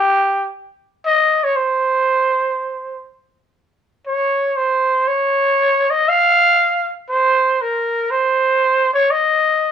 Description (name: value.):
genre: jazz.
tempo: free time.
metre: none.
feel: none.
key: unclear.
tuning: A4 = 440 Hz.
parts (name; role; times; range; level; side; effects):
growling trumpet; solo; 0.0-9.7 s; G4 to F5; -14 LUFS; right 1 dB; none.
room: light reverb.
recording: minimal, uncompressed stereo recording.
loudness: -14 LUFS.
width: side -8 dB against mid.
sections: 0.0-9.7 A section.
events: trumpet solo 0.0-9.7.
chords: none.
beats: free time.